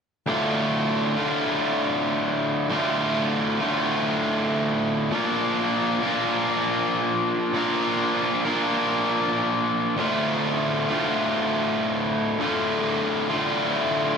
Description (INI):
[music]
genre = rock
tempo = 99 BPM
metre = 4/4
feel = straight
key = D minor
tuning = A4 = 439 Hz
[part]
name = overdriven electric guitar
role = solo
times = 0.3-14.2 s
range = D2 to Bb4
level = -21 LUFS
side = equal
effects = slapback echo
[sound]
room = wet concert hall reverb, RT60 1.9 s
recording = big arena sound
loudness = -21 LUFS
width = side -6 dB against mid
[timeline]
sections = 0.3-10.0 A section; 10.0-14.2 A section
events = none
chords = 0.3 Dm; 5.1 Bb; 10.0 Dm